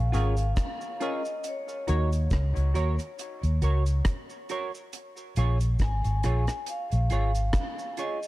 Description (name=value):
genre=dub reggae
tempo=69 BPM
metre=4/4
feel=swing 56% on 16ths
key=Bb minor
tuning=A4 = 439 Hz
part: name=vibraphone with medium hard mallets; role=melody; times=0.0-8.3 s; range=Db5 to Ab5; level=-36 LUFS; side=left 1 dB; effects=dub echo
part: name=vintage muted fingered electric bass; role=bass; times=0.0-7.5 s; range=Ab1 to Eb2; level=-24 LUFS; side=equal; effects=none
part: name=semi-hollow electric guitar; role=accompaniment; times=0.1-8.2 s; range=F4 to Db5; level=-36 LUFS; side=right 4 dB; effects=analog chorus, dub echo
part: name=percussive organ stab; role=stabs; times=0.1-2.1 s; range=Db4 to Db5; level=-38 LUFS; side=left 4 dB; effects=chorus, dub echo
part: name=deep reggae drum kit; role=drums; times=0.1-8.2 s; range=hi-hat, kick drum, rim click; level=-30 LUFS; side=equal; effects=none
part: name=cabasa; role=percussion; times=0.1-8.3 s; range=none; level=-49 LUFS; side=right 3 dB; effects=dub echo
room=studio reverb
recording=dark, warm production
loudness=-25 LUFS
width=side -18 dB against mid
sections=0.0-8.3 A section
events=none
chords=0.0 Bbm7; 1.4 Ebm7; 4.9 Bbm7